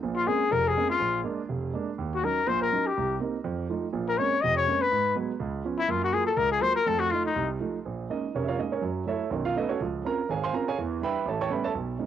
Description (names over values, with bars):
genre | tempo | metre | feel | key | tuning
jazz | 246 BPM | 4/4 | swing 57% on 8ths | Bb minor | A4 = 440 Hz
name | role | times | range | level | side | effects
warm grand piano | accompaniment | 0.0-12.1 s | F1 to C#6 | -28 LUFS | right 5 dB | cassette tape
warm trumpet | melody | 0.2-7.5 s | Eb4 to Eb5 | -25 LUFS | left 5 dB | none
room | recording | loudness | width
light reverb | home recording on cassette | -25 LUFS | side -10 dB against mid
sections
0.0-7.8 A section; 7.8-12.1 B section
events
none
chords
0.0 Bbm9; 1.0 Bb7; 2.0 Ebm7; 3.0 Cm7; 3.4 F7; 3.9 Bbm9; 4.9 Abm7; 5.4 Db7; 5.9 Gbmaj7; 6.9 F7; 7.8 Bbm7; 8.8 Gbm7; 9.3 B9; 9.8 Dbmaj7; 10.8 Em7; 11.3 A9